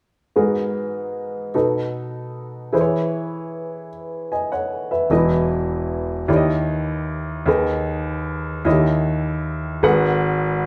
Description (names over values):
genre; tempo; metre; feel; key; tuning
gospel; 51 BPM (dotted quarters); 6/8; straight; G# minor; A4 = 439 Hz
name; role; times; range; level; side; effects
warm upright piano; accompaniment; 0.4-10.7 s; G#2 to G#5; -23 LUFS; equal; none
bright concert grand piano; bass; 5.1-10.7 s; E1 to D#2; -24 LUFS; equal; none
room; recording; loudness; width
wet stone room reverb, RT60 1.1 s; band playing live in one room; -21 LUFS; mono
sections
0.4-9.8 A section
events
none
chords
0.4 G#m9; 1.5 B7; 2.7 E6; 5.1 Badd11/E; 6.3 D#7b9; 7.5 G#m/D#; 8.7 D#7b9; 9.8 G#m9